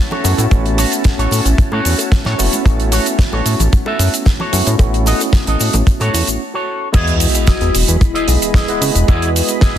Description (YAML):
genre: nu-disco, nu disco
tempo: 112 BPM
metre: 4/4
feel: straight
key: unclear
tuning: A4 = 441 Hz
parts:
  - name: bright tine electric piano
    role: accompaniment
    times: 0.0-9.8 s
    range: G#3 to D#5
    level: -21 LUFS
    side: equal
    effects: medium stereo tremolo
  - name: lush unison pad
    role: sustained chords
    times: 0.0-9.8 s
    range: C#4 to B5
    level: -28 LUFS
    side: equal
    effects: chorus, sidechain pumping
  - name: electric guitar with an envelope filter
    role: riff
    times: 0.1-9.8 s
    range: E4 to E5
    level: -22 LUFS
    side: right 1 dB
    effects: wide subtle chorus
  - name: congas, bongos and tambourine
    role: percussion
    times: 0.1-6.4 s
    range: none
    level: -28 LUFS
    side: left 3 dB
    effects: none
  - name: fat analog bass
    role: bass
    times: 0.2-9.8 s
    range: E1 to C#3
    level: -15 LUFS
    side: equal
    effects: none
  - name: damped 70s drum kit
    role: drums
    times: 0.2-9.7 s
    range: cabasa, crash cymbal, hi-hat, snare drum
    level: -20 LUFS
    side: right 2 dB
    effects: small room ambience
  - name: kick drum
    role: drums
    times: 0.5-9.7 s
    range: none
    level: -12 LUFS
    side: equal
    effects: small room ambience
  - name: sub drop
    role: sound effects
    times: 7.0-9.1 s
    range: none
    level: -22 LUFS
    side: equal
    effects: none
  - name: soft octave-layered synth lead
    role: melody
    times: 7.5-9.8 s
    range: E4 to B4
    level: -23 LUFS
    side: left 4 dB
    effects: chorus, phaser
room: studio ambience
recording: dense, heavily limited modern master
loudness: -12 LUFS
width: side -11 dB against mid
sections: 0.0-6.9 A section; 6.9-9.8 B section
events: filter sweep on tine electric piano 0.0-6.9; break 6.4-6.9; drop 6.9-9.8; impact 6.9-9.1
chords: 0.0 A6; 6.9 Emaj7